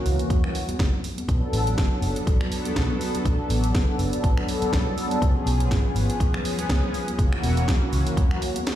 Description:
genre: nu-disco, nu disco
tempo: 122 BPM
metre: 4/4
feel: swing 56% on 16ths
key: B minor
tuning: A4 = 439 Hz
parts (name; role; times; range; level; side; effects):
- warm analog pad; accompaniment; 0.0-8.4 s; E3 to A4; -27 LUFS; equal; lush chorus, sidechain pumping, slapback echo
- vintage muted picked electric bass; bass; 0.1-8.3 s; E1 to F#2; -25 LUFS; equal; tube saturation, sidechain pumping
- house drum kit; drums; 0.1-8.8 s; finger snaps, hi-hat, snare drum; -32 LUFS; right 1 dB; none
- cabasa and congas; percussion; 0.1-8.8 s; none; -35 LUFS; left 2 dB; none
- electronic kick drum; drums; 0.3-8.3 s; none; -23 LUFS; equal; none
room: light reverb, digital ambience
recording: played on a big sound system in a bare room, large studio reverb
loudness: -21 LUFS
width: side -12 dB against mid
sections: 0.0-8.8 A section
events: filter sweep on analog synth pad 0.0-8.8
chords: 0.0 F#7; 1.3 Bm7; 5.2 C#7; 6.9 F#7

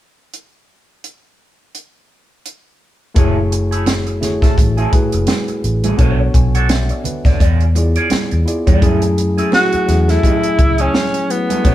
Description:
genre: lush 1970s-style soul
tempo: 85 BPM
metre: 4/4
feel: swing 58% on 16ths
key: F# minor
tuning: A4 = 439 Hz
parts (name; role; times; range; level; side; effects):
- compact cocktail drum kit; drums; 0.3-11.7 s; hi-hat, kick drum, snare drum; -16 LUFS; equal; none
- tine electric piano; accompaniment; 3.1-11.7 s; D3 to G#5; -20 LUFS; left 1 dB; none
- electric guitar through a small old amp; riff; 3.2-11.7 s; A3 to D5; -24 LUFS; right 2 dB; wah
- vintage muted fingered electric bass; bass; 3.2-11.7 s; F#1 to F#2; -16 LUFS; equal; none
- congas; percussion; 3.2-11.7 s; none; -26 LUFS; right 5 dB; none
- breathy tenor saxophone; melody; 9.5-11.7 s; B3 to F#4; -16 LUFS; equal; none
room: moderate stone room reverb, RT60 1.3 s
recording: band playing live in one room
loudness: -12 LUFS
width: side -13 dB against mid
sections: 0.3-3.2 A section; 3.2-8.8 B section; 8.8-11.7 C section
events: none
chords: 0.3 N.C.; 3.2 F#m9; 6.0 Bm9; 7.4 E7b9; 8.8 F#m9

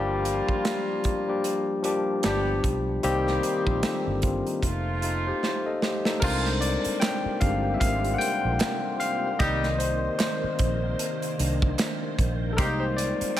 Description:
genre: lush 1970s-style soul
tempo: 76 BPM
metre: 4/4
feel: swing 58% on 16ths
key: unclear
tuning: A4 = 440 Hz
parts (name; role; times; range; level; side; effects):
- barky tine electric piano; accompaniment; 0.0-13.4 s; Eb3 to G5; -26 LUFS; left 2 dB; overdrive
- warm horn section; stabs; 0.0-12.8 s; G3 to G4; -33 LUFS; equal; none
- vintage muted fingered electric bass; bass; 0.0-13.2 s; F1 to C2; -29 LUFS; right 1 dB; none
- modern studio drum kit; drums; 0.3-13.4 s; crash cymbal, hi-hat, kick drum, snare drum; -28 LUFS; right 1 dB; none
- soft string machine; sustained chords; 6.7-13.4 s; C3 to C5; -34 LUFS; right 1 dB; phaser, ensemble chorus
- group handclap; percussion; 7.0-13.4 s; none; -36 LUFS; right 5 dB; none
room: light reverb, small room reverb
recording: none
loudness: -23 LUFS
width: side -12 dB against mid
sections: 0.0-6.2 A section; 6.2-13.4 B section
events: drum fill 5.4-6.2; tine electric piano solo 6.2-13.4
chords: 0.0 Gm7; 2.2 G7; 3.0 Cm7; 4.6 F; 6.2 Bb13; 9.4 Cm9; 12.6 Fm11

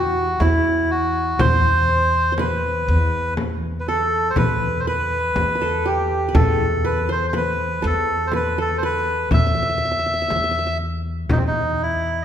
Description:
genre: Arabic maqam ensemble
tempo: 121 BPM (eighths)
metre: 10/8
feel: straight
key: E minor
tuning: A4 = 440 Hz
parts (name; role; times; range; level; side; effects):
- melodica; melody; 0.0-12.2 s; C4 to E5; -21 LUFS; equal; none
- qanun; second line; 0.0-11.6 s; E4 to E5; -25 LUFS; right 1 dB; none
- upright bass; bass; 0.0-12.2 s; E2; -23 LUFS; equal; none
- frame drum; percussion; 0.4-11.5 s; none; -24 LUFS; left 2 dB; none
room: wet recital hall reverb, RT60 1.6 s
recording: recorded in a church or concert hall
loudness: -18 LUFS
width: side -9 dB against mid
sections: 0.0-11.3 A section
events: none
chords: none

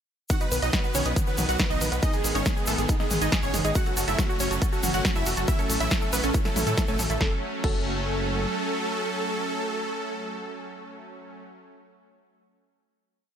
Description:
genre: uplifting trance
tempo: 139 BPM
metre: 4/4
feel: straight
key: F# dorian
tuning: A4 = 440 Hz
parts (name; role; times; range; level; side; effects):
- supersaw chords; melody; 0.3-11.4 s; A3 to F#5; -31 LUFS; right 2 dB; sidechain pumping, ping-pong delay
- wide unison pluck; second line; 0.3-12.1 s; F#4 to F#5; -35 LUFS; equal; sidechain pumping, ping-pong delay
- supersaw pad; sustained chords; 0.3-11.4 s; D#3 to C#4; -32 LUFS; equal; sidechain pumping
- tight sequenced synth; arpeggios; 0.3-7.8 s; D#3 to A4; -34 LUFS; right 3 dB; chorus, phaser, sidechain pumping, ping-pong delay
- electronic kick drum; drums; 0.3-7.8 s; none; -26 LUFS; equal; none
- punchy analog drum machine; drums; 0.3-7.8 s; crash cymbal, hi-hat, snare drum, toms; -30 LUFS; equal; none
- tube shaker; percussion; 0.3-7.2 s; none; -35 LUFS; left 1 dB; none
- gritty driven synth bass; bass; 0.5-8.5 s; E1 to A2; -30 LUFS; equal; sidechain pumping
room: digital ambience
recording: none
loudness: -23 LUFS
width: side -8 dB against mid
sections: 0.3-7.2 drop; 7.2-10.7 final chord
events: drop 0.3-7.2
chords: 0.3 B; 2.0 G#m; 3.8 F#m; 5.5 A6; 7.2 F#m

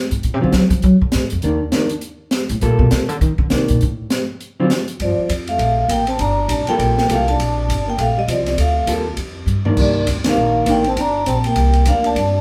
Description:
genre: jazz, small-group swing and bop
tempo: 201 BPM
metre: 4/4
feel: swing 60% on 8ths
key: G minor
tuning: A4 = 440 Hz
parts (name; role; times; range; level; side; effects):
- upright bass; bass; 0.1-12.4 s; G1 to F#3; -20 LUFS; equal; none
- open jazz drum kit; drums; 0.1-12.2 s; crash cymbal, hi-hat, kick drum, ride cymbal, snare drum, toms; -26 LUFS; equal; none
- hollow-body jazz guitar; accompaniment; 0.4-12.2 s; D3 to A4; -22 LUFS; equal; none
- vibraphone with medium mallets; melody; 5.0-12.4 s; D5 to Bb5; -22 LUFS; equal; none
- breathy trombone; second line; 5.0-12.4 s; F3 to D4; -25 LUFS; equal; none
room: moderate large studio reverb, RT60 0.9 s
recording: band playing live in one room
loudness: -17 LUFS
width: mono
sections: 0.0-5.0 A section; 5.0-12.4 B section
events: upright bass solo 0.0-5.0; drum fill 9.5; band accent 10.2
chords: 0.2 D7#9; 1.4 Eb5; 2.6 Gm9; 3.2 Cm9; 3.8 D7#9; 5.0 Gm9; 9.8 Cm9

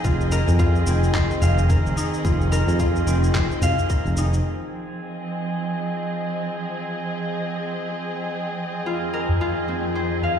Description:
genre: organic downtempo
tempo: 109 BPM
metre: 4/4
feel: swing 59% on 16ths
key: F minor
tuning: A4 = 436 Hz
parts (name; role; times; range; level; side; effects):
- dark chamber string section; sustained chords; 0.0-10.4 s; F2 to Eb5; -26 LUFS; right 1 dB; sidechain pumping, low-pass filter
- Celtic harp; arpeggios; 0.0-10.4 s; C4 to F5; -26 LUFS; left 2 dB; ping-pong delay
- sustaining fretless electric bass; bass; 0.0-4.4 s; F1 to F2; -20 LUFS; equal; sidechain pumping
- electronic cabasa and handclaps; drums; 0.0-4.4 s; none; -33 LUFS; equal; overdrive, low-pass filter on perc, studio reverb, low-pass filter on snare
- electronic kick drum; drums; 0.0-4.0 s; none; -21 LUFS; equal; studio reverb
- udu; percussion; 0.5-3.9, 9.3-10.4 s; none; -24 LUFS; equal; none
room: moderate scoring stage reverb, RT60 1.8 s, studio ambience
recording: played on a big sound system in a bare room, large studio reverb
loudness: -20 LUFS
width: side -8 dB against mid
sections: 0.0-4.5 A section; 4.5-10.4 B section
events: filter sweep on string section 4.5-10.4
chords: 0.0 Fm7

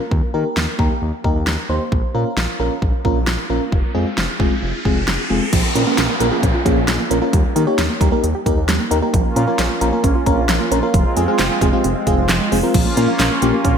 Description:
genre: synth-pop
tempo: 133 BPM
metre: 4/4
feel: straight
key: Bb dorian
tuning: A4 = 440 Hz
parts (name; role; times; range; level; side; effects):
- mellow FM electric piano; accompaniment; 0.0-13.6 s; Ab3 to Db5; -20 LUFS; equal; chorus, phaser
- smooth synth bass; bass; 0.1-13.8 s; F1 to Eb3; -22 LUFS; equal; none
- pop drum kit; drums; 0.1-13.8 s; crash cymbal, handclaps, hi-hat, kick drum, snare drum; -19 LUFS; equal; gated reverb
- riser and downlifter; sound effects; 3.5-9.1 s; none; -26 LUFS; equal; none
- soft round pluck; arpeggios; 5.5-13.7 s; F3 to G4; -23 LUFS; right 4 dB; chorus, ping-pong delay
- brassy analog pad; sustained chords; 9.1-13.8 s; Ab3 to F4; -22 LUFS; right 1 dB; chorus, tremolo
room: moderate lush hall reverb, RT60 2.4 s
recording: bright 1980s-style digital production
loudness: -15 LUFS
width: side -7 dB against mid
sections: 0.0-5.5 A section; 5.5-12.7 B section; 12.7-13.8 C section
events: riser 3.5-5.5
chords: 0.1 Eb; 1.9 Bbm; 3.7 Fm; 5.5 Bbm; 7.3 Eb; 9.1 Bbm; 10.9 Fm; 12.7 Bbm

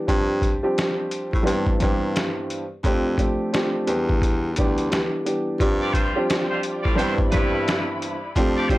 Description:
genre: hip hop, boom-bap hip-hop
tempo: 87 BPM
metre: 4/4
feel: swing 61% on 16ths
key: C major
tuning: A4 = 440 Hz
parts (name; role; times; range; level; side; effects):
- dark upright piano; accompaniment; 0.0-8.8 s; G2 to G4; -23 LUFS; equal; high-pass filter, low-pass filter
- clear baritone saxophone; bass; 0.1-8.8 s; D2 to A2; -27 LUFS; equal; transformer saturation
- trip hop sampler-style drum kit; drums; 0.1-8.8 s; hi-hat, kick drum, snare drum; -23 LUFS; equal; none
- warm studio string section; sustained chords; 5.6-8.8 s; E4 to B5; -33 LUFS; left 1 dB; high-pass filter, low-pass filter
- muted trumpet section; stabs; 5.8-8.8 s; G3 to D5; -28 LUFS; equal; high-pass filter, low-pass filter, tape echo
room: little or no reverb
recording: dry, gritty hardware recording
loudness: -20 LUFS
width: side -17 dB against mid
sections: 0.0-5.6 A section; 5.6-8.8 B section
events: none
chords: 0.1 G7sus4; 1.5 Cmaj9/G; 2.8 F69; 3.9 Em7; 5.6 G7sus4; 7.0 Cmaj9/G

